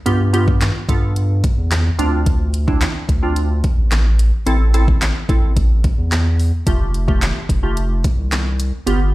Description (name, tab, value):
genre	dance-pop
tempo	109 BPM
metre	4/4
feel	straight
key	unclear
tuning	A4 = 440 Hz
part	glassy wavetable pluck	accompaniment	0.1-9.0 s	A3 to A4	-22 LUFS	right 2 dB	chorus, sidechain pumping
part	saturated sub bass	bass	0.1-9.1 s	F1 to G2	-16 LUFS	equal	sidechain pumping
part	pop drum kit	drums	0.1-9.0 s	handclaps, hi-hat, kick drum, snare drum	-18 LUFS	equal	overdrive
room	digital ambience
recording	played on a big sound system in a bare room, large studio reverb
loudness	-14 LUFS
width	side -18 dB against mid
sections	0.0-9.1 A section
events	none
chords	0.1 G7; 2.0 Dm7; 4.5 Am; 6.7 Fadd9